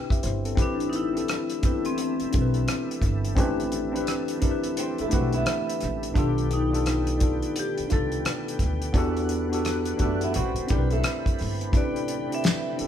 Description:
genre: R&B, neo-soul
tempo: 86 BPM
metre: 4/4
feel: swing 63% on 16ths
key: A dorian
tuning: A4 = 442 Hz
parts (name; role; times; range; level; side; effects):
- mellow tine electric piano; accompaniment; 0.0-12.9 s; D#3 to G5; -28 LUFS; left 1 dB; medium stereo tremolo
- damped 70s drum kit; drums; 0.1-12.9 s; hi-hat, kick drum, rim click, snare drum; -26 LUFS; equal; none
- upright bass; bass; 0.2-12.8 s; G1 to F#2; -29 LUFS; equal; none
- vibraphone with medium hard mallets; melody; 0.6-12.9 s; C4 to E5; -30 LUFS; left 2 dB; none
- tonewheel organ; sustained chords; 0.6-12.9 s; B2 to F#5; -36 LUFS; left 1 dB; slow rotary speaker, chorus vibrato
- flamenco guitar; second line; 4.8-11.7 s; A3 to C5; -31 LUFS; right 4 dB; none
room: moderate large studio reverb, RT60 1.0 s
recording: band playing live in one room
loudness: -23 LUFS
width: side -10 dB against mid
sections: 0.6-11.7 A section; 11.7-12.9 B section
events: none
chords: 0.0 Am9; 0.6 Am7; 6.2 B7alt; 8.9 Em9; 10.3 Am9

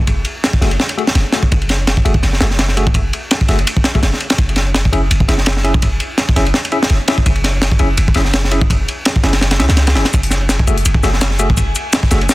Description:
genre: drum and bass, jungle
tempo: 167 BPM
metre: 4/4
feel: swing 55% on 16ths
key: unclear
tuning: A4 = 440 Hz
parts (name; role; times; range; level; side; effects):
- warm 808-style bass; bass; 0.0-12.3 s; F#1 to C#2; -15 LUFS; equal; none
- crunchy breakbeat drum kit; drums; 0.1-12.3 s; kick drum, ride cymbal, snare drum; -14 LUFS; equal; none
- tine electric piano; stabs; 0.6-12.2 s; A3 to E5; -22 LUFS; left 2 dB; medium stereo tremolo, low-pass filter, dub echo
- breakbeat sampler-style drum kit; drums; 10.1-12.3 s; hi-hat, shaker, snare drum; -22 LUFS; left 4 dB; high-pass filter on perc, high-pass filter on hats, high-pass filter on snare
- drifting glass-harmonics texture; texture; 10.4-12.3 s; G#5; -30 LUFS; left 3 dB; chorus, built-in reverb
room: small room reverb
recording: dense, heavily limited modern master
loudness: -12 LUFS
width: side -19 dB against mid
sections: 0.0-12.3 A section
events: filter sweep on tine electric piano 0.0-12.3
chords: 0.0 N.C.; 4.4 C#m/F#; 10.1 F#m9

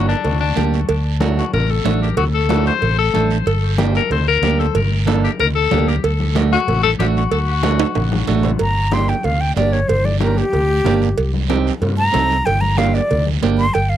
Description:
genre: latin, cumbia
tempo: 187 BPM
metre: 4/4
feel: straight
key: G minor from 8.6 s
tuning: A4 = 440 Hz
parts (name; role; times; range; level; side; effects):
- clear tenor saxophone; second line; 0.0-8.3 s; D4 to C5; -20 LUFS; left 9 dB; tape echo
- clean electric guitar; accompaniment; 0.0-13.7 s; A3 to Bb4; -19 LUFS; right 9 dB; none
- fingered electric bass; bass; 0.0-14.0 s; G1 to G2; -18 LUFS; equal; none
- guiro; percussion; 0.1-14.0 s; none; -33 LUFS; right 20 dB; none
- congas; percussion; 0.2-13.9 s; none; -24 LUFS; left 4 dB; none
- cowbell and timbales; percussion; 0.2-13.9 s; none; -24 LUFS; right 6 dB; none
- breathy concert flute; melody; 8.6-14.0 s; G4 to C6; -19 LUFS; equal; none
room: light reverb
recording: dry, close 1970s-style studio recording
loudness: -14 LUFS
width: side -11 dB against mid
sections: 0.0-8.6 A section; 8.6-14.0 B section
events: tenor saxophone solo 0.0-8.6; drum fill 7.6-8.6; flute solo 8.6-14.0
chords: 0.0 Gm; 0.9 D; 3.5 Gm; 6.0 D; 8.6 Gm; 11.2 Cm; 12.5 Gm

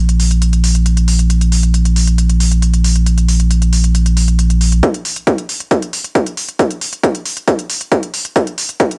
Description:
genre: driving peak-time techno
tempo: 136 BPM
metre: 4/4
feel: straight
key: unclear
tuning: A4 = 435 Hz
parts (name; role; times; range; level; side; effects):
- saturated sub bass; bass; 0.0-4.8 s; Bb1; -13 LUFS; equal; overdrive, sidechain pumping, low-pass filter
- electronic hi-hat; drums; 0.1-9.0 s; none; -23 LUFS; equal; overdrive, studio reverb, cassette tape
- electronic kick drum; drums; 4.8-8.9 s; none; -16 LUFS; equal; high-pass filter on kick, studio reverb, cassette tape
room: little or no reverb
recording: home recording on cassette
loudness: -14 LUFS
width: mono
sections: 0.0-4.8 A section; 4.8-9.0 B section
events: build-up 4.8-9.0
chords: none

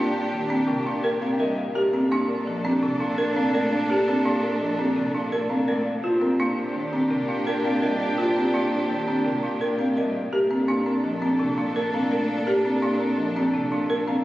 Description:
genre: classical, minimalist pattern music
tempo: 168 BPM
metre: 6/4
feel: straight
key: Bb major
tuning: A4 = 440 Hz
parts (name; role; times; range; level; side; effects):
- clear grand piano; melody; 0.0-14.2 s; G4 to F5; -34 LUFS; left 5 dB; none
- clear clarinet; second line; 0.0-14.2 s; D4; -30 LUFS; right 1 dB; none
- folk marimba with medium hard mallets; accompaniment; 0.0-13.8 s; C3 to Bb3; -35 LUFS; equal; none
- rich chamber string section; sustained chords; 0.0-14.2 s; D4 to A4; -30 LUFS; equal; none
- folk marimba with medium hard mallets; arpeggios; 0.0-14.2 s; C4 to Bb4; -24 LUFS; equal; none
- rich cello; bass; 0.0-14.2 s; Bb2; -32 LUFS; equal; none
room: wet church reverb, RT60 3.1 s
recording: recorded on a phone in the room, studio ambience, compression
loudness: -21 LUFS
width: side -16 dB against mid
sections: 0.0-14.2 A section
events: none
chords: 0.0 Ebmaj9/Bb; 1.8 Bbmaj9; 6.0 Ebmaj9/Bb (rootless); 10.3 Bbmaj9

